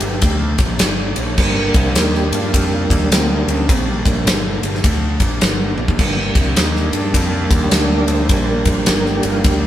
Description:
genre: blues rock power trio and southern rock.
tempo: 104 BPM.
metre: 4/4.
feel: swing 63% on 8ths.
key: G minor.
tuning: A4 = 439 Hz.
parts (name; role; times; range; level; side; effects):
tonewheel organ; sustained chords; 0.0-9.7 s; Bb2 to D5; -20 LUFS; right 2 dB; slow rotary speaker, chorus vibrato.
fuzz picked electric bass; bass; 0.0-9.7 s; G1 to G2; -20 LUFS; equal; overdrive.
huge arena drum kit; drums; 0.0-9.6 s; crash cymbal, kick drum, ride cymbal, snare drum, toms; -16 LUFS; equal; none.
room: light reverb.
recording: band playing live in one room.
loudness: -14 LUFS.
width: side -12 dB against mid.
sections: 0.0-9.7 A section.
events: tonewheel organ solo 0.0-9.7; drum fill 5.7.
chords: 0.0 Gm.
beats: 0.23 0.80 | 1.38 1.96 2.53 3.11 | 3.68 4.26 4.84 5.41 | 5.99 6.57 7.14 7.72 | 8.30 8.87 9.45.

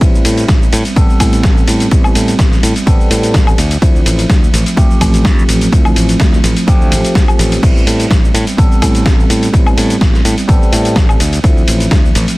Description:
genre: filtered disco house.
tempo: 126 BPM.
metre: 4/4.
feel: swing 53% on 16ths.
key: A minor.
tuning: A4 = 443 Hz.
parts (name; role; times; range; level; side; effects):
bell-like tine electric piano; accompaniment; 0.0-12.4 s; F3 to A4; -16 LUFS; right 1 dB; phaser, sidechain pumping.
modern bright fingered electric bass; bass; 0.0-12.2 s; A1 to A2; -16 LUFS; equal; tube saturation, sidechain pumping.
dusty soul sampler-style drum kit; drums; 0.0-12.4 s; cabasa, crash cymbal, hi-hat, ride cymbal, snare drum, woodblock; -17 LUFS; equal; overdrive, sidechain pumping on hats, sidechain pumping on perc, sidechain pumping on cymbals.
electronic kick drum; drums; 0.0-12.0 s; none; -11 LUFS; equal; overdrive.
room: digital ambience.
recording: dense, heavily limited modern master.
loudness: -8 LUFS.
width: side -20 dB against mid.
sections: 0.0-12.4 A section.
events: none.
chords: 0.0 Am9; 3.6 Dm9; 7.6 Am9; 11.2 Dm9.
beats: | 0.01 0.49 0.96 1.44 | 1.92 2.39 2.87 3.35 | 3.82 4.30 4.78 5.25 | 5.73 6.20 6.68 7.16 | 7.63 8.11 8.58 9.06 | 9.54 10.01 10.49 10.96 | 11.44 11.92.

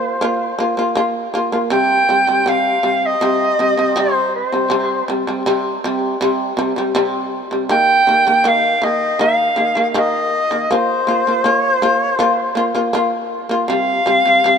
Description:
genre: mongolian traditional, Mongolian folk.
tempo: 80 BPM.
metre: 4/4.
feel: straight.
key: C yu mode.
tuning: A4 = 440 Hz.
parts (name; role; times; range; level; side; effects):
mellow soprano saxophone; melody; 0.0-14.6 s; C5 to G5; -15 LUFS; equal; none.
shamisen; arpeggios; 0.0-14.6 s; C3 to F4; -18 LUFS; equal; none.
room: moderate huge ambient reverb, RT60 4.7 s.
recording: none.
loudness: -14 LUFS.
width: side -7 dB against mid.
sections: 0.0-1.7 A section; 1.7-13.7 B section.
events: none.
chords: 0.0 Bb5; 1.7 C5; 7.7 Eb5; 10.7 Bb5; 13.7 C5.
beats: 0.23 0.98 | 1.73 2.48 3.22 3.97 | 4.72 5.46 6.21 6.96 | 7.71 8.45 9.20 9.95 | 10.70 11.44 12.19 12.94 | 13.69 14.44.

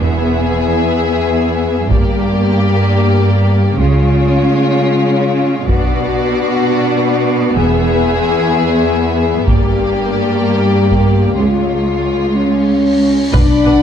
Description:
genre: cinematic, epic orchestral film score.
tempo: 63 BPM (dotted quarters).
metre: 6/8.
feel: straight.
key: unclear.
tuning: A4 = 441 Hz.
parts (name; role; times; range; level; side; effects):
warm symphonic violin section; melody; 0.0-13.8 s; C#5 to E5; -25 LUFS; left 3 dB; none.
warm symphonic violin section; second line; 0.0-13.8 s; E#4 to B5; -22 LUFS; left 4 dB; none.
warm symphonic viola section; accompaniment; 0.0-13.7 s; G#3 to B4; -20 LUFS; right 1 dB; none.
mellow French horn section; sustained chords; 0.0-13.8 s; G#3 to G#4; -16 LUFS; left 4 dB; none.
rich chamber double bass section; bass; 0.0-13.7 s; E1 to C#2; -20 LUFS; right 3 dB; none.
warm studio cello section; bass; 0.0-13.7 s; C#2 to C#3; -16 LUFS; right 2 dB; none.
solo taiko drums; drums; 1.9-13.8 s; none; -16 LUFS; equal; none.
cymbal swell and sub drop; sound effects; 12.6-13.8 s; none; -26 LUFS; equal; none.
timpani; percussion; 13.3-13.8 s; B2; -19 LUFS; left 2 dB; none.
room: moderate scoring stage reverb, RT60 1.8 s.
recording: dark, warm production.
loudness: -11 LUFS.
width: side -8 dB against mid.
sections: 0.0-13.3 A section.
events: build-up 0.0-13.3; cymbal swell 12.6-13.3; impact 13.3-13.8.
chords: 0.0 E; 1.9 Gm; 3.8 C#; 5.7 Bm; 7.6 E; 9.5 Gm; 11.4 C#.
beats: | 0.01 0.95 | 1.90 2.85 | 3.79 4.73 | 5.68 6.62 | 7.57 8.52 | 9.47 10.43 | 11.39 12.37 | 13.33.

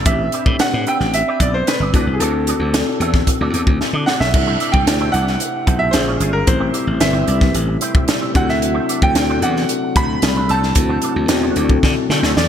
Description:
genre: polished 1980s jazz-funk pop.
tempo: 112 BPM.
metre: 4/4.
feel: straight.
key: unclear.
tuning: A4 = 440 Hz.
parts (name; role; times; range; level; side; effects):
bright concert grand piano; melody; 0.0-12.5 s; G#4 to B5; -22 LUFS; right 2 dB; none.
mellow tine electric piano; accompaniment; 0.0-12.5 s; C4 to C5; -22 LUFS; left 4 dB; lush chorus.
slap bass; bass; 0.0-12.5 s; G1 to D3; -19 LUFS; equal; none.
electric guitar with an envelope filter; riff; 0.1-12.4 s; A3 to E5; -27 LUFS; right 4 dB; ensemble chorus.
crisp fusion drum kit; drums; 0.1-12.5 s; crash cymbal, hi-hat, kick drum, snare drum; -18 LUFS; equal; gated reverb.
chamber organ, principal; sustained chords; 4.3-12.5 s; C3 to G4; -29 LUFS; left 1 dB; none.
room: moderate plate reverb, RT60 2.7 s.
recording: bright 1980s-style digital production.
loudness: -14 LUFS.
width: side -9 dB against mid.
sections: 0.0-4.3 A section; 4.3-12.5 B section.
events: drum fill 3.8-4.3, 11.8-12.5.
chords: 0.1 Am11; 1.9 D7; 4.3 C6; 6.0 Bbm7; 6.5 Am7; 8.4 D7.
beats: | 0.06 0.60 1.13 1.67 | 2.20 2.74 3.27 3.81 | 4.34 4.88 5.41 5.95 | 6.49 7.02 7.55 8.09 | 8.62 9.16 9.70 10.23 | 10.76 11.30 11.83 12.37.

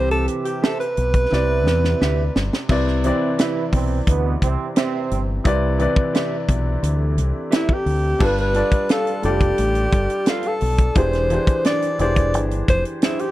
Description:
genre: lush 1970s-style soul.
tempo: 87 BPM.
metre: 4/4.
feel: straight.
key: unclear.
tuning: A4 = 439 Hz.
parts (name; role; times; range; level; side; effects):
breathy alto saxophone; melody; 0.0-2.5, 7.6-13.3 s; E4 to D5; -22 LUFS; equal; none.
warm baby grand piano; accompaniment; 0.0-13.3 s; C3 to E5; -24 LUFS; left 1 dB; none.
clear trombone section; stabs; 0.0-5.2 s; B2 to G4; -26 LUFS; right 6 dB; none.
deep dub fingered electric bass; bass; 0.0-12.8 s; E1 to E2; -21 LUFS; equal; none.
vibraphone with soft mallets; texture; 0.0-13.3 s; D4 to A4; -35 LUFS; equal; none.
tight funk drum kit; drums; 0.1-13.3 s; crash cymbal, hi-hat, kick drum, snare drum; -20 LUFS; equal; none.
mellow electric guitar; riff; 0.6-13.3 s; D4 to F5; -29 LUFS; right 3 dB; vibrato effect.
room: studio reverb.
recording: dry, close 1970s-style studio recording.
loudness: -17 LUFS.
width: side -15 dB against mid.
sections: 0.0-2.7 A section; 2.7-8.2 B section; 8.2-13.3 C section.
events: alto saxophone solo 0.0-2.7; drum fill 1.3-2.7.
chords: 0.0 Am7/C; 1.3 Cmaj7; 8.2 G9; 11.0 E7alt.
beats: 0.62 1.31 2.00 | 2.69 3.38 4.07 4.76 | 5.45 6.14 6.83 7.52 | 8.21 8.90 9.59 10.28 | 10.96 11.65 12.34 13.03.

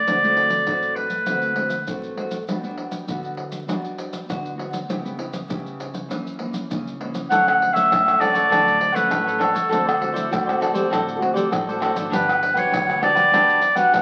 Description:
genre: samba and choro.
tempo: 100 BPM.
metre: 4/4.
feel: straight.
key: D major.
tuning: A4 = 440 Hz.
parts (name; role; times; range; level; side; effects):
clear clarinet; melody; 0.0-2.2, 7.3-14.0 s; A4 to F#5; -20 LUFS; equal; none.
nylon-string guitar; accompaniment; 0.0-14.0 s; F#2 to G4; -31 LUFS; equal; none.
maracas, surdo, pandeiro and tamborim; percussion; 0.1-14.0 s; none; -30 LUFS; equal; none.
cavaquinho; accompaniment; 7.3-14.0 s; D4 to F#5; -26 LUFS; equal; none.
upright bass; bass; 7.3-14.0 s; G1 to D2; -41 LUFS; equal; none.
mellow trombone; second line; 10.0-11.9 s; E4 to A4; -28 LUFS; equal; none.
room: wet large studio reverb, RT60 1.0 s.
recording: very old 78 rpm record, vinyl crackle.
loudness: -21 LUFS.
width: mono.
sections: 0.0-7.3 A section; 7.3-14.0 B section.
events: none.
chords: 0.1 D7; 2.5 Gmaj7; 4.9 C#m7b5; 6.1 F#7; 7.3 Dmaj7; 9.7 D7; 12.1 Gmaj7.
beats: | 0.07 0.67 1.28 1.88 | 2.49 3.09 3.69 4.30 | 4.90 5.50 6.11 6.71 | 7.31 7.91 8.51 9.12 | 9.72 10.32 10.92 11.52 | 12.12 12.73 13.33 13.93.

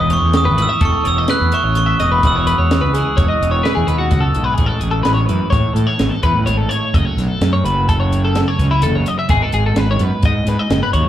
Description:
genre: math rock and midwest emo.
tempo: 127 BPM.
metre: 5/4.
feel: straight.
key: unclear.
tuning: A4 = 440 Hz.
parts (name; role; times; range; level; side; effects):
glockenspiel with hard plastic mallets; melody; 0.0-4.1 s; C#6 to F#6; -20 LUFS; right 2 dB; slapback echo.
twelve-string electric guitar; accompaniment; 0.0-11.1 s; E2 to F#4; -24 LUFS; right 6 dB; slapback echo.
twelve-string electric guitar; arpeggios; 0.0-11.1 s; E4 to E5; -20 LUFS; left 3 dB; lush chorus, slapback echo.
fuzz fingered electric bass; bass; 0.0-11.1 s; E1 to A2; -17 LUFS; equal; overdrive.
compact cocktail drum kit; drums; 0.1-11.1 s; hi-hat, kick drum, snare drum; -18 LUFS; equal; none.
room: little or no reverb.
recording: live gig heard through the venue's PA, club reverb.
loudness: -13 LUFS.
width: side -12 dB against mid.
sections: 0.0-4.6 A section; 4.6-11.1 B section.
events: none.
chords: 0.0 B9sus4/E; 2.2 E69; 4.6 Amaj7; 6.9 F#m7; 9.3 G#m7.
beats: 0.34 0.81 1.29 1.76 | 2.23 2.70 3.17 3.64 4.12 | 4.59 5.06 5.53 6.00 6.47 | 6.94 7.41 7.88 8.36 8.83 | 9.30 9.77 10.24 10.71.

